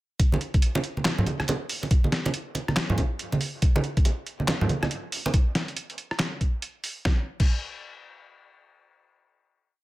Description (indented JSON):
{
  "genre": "dubstep",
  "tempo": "140 BPM",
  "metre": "4/4",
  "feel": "swing 62% on 16ths, half-time",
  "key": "none",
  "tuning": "none",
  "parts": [
    { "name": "electronic kick drum", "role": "drums", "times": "0.2-7.5 s", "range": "none", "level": "-21 LUFS", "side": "equal", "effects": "small room ambience" },
    { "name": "trip hop sampler-style drum kit", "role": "drums", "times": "0.2-7.5 s", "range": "crash cymbal, handclaps, hi-hat, rim click, snare drum", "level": "-29 LUFS", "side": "equal", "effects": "small room ambience" },
    { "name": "congas", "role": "percussion", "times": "0.3-5.3 s", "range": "none", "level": "-27 LUFS", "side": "right 2 dB", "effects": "dub echo" }
  ],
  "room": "little or no reverb",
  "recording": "none",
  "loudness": "-23 LUFS",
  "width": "side -18 dB against mid",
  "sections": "0.2-7.1 drop; 7.1-9.8 final hit",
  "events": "drop 0.2-7.1",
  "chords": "none",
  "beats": "| 0.20 0.62 1.05 1.48 | 1.91 2.34 2.77 3.19 | 3.62 4.05 4.48 4.91 | 5.34 5.77 6.20 6.62 | 7.05 7.48"
}